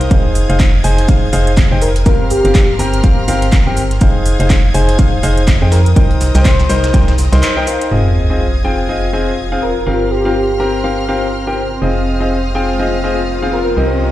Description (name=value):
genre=piano house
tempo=123 BPM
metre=4/4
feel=swing 58% on 16ths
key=F minor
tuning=A4 = 443 Hz
part: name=bright studio violin section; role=sustained chords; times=0.0-14.1 s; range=C5 to Ab6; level=-27 LUFS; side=left 1 dB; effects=sidechain pumping
part: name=clear concert grand piano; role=riff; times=0.0-14.1 s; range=C4 to C6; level=-17 LUFS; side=left 1 dB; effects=sidechain pumping, ping-pong delay
part: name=organ-like FM bass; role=bass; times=0.0-14.1 s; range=F1 to F2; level=-15 LUFS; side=equal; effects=sidechain pumping
part: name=dusty soul sampler-style drum kit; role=drums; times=0.0-7.9 s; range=hi-hat, shaker, snare drum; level=-29 LUFS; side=equal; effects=none
part: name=house drum kit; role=drums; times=0.0-7.9 s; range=handclaps, hi-hat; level=-23 LUFS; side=right 1 dB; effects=none
part: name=electronic kick drum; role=drums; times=0.1-7.1 s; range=none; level=-11 LUFS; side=equal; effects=none
part: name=airy dreamy lead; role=melody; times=1.8-10.6, 13.5-13.7 s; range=G4 to C5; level=-19 LUFS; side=equal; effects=chorus, ping-pong delay
part: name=sub drop and riser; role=sound effects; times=7.9-14.1 s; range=none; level=-20 LUFS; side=equal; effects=none
part: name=granular cloud pad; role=texture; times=9.0-14.1 s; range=C4 to G5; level=-22 LUFS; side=left 1 dB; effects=built-in reverb, sidechain pumping
room=light reverb, digital ambience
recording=played on a big sound system in a bare room, large studio reverb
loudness=-11 LUFS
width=side -14 dB against mid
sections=0.0-7.9 A section; 7.9-14.1 B section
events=break 7.4-7.9; band accent 7.4; impact 7.9-9.9; riser 12.2-14.1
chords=0.1 Fm7; 2.1 C7sus4/G; 4.0 Fm7; 6.0 Cm7; 7.9 Fm7; 9.9 C7sus4/G; 11.8 Fm7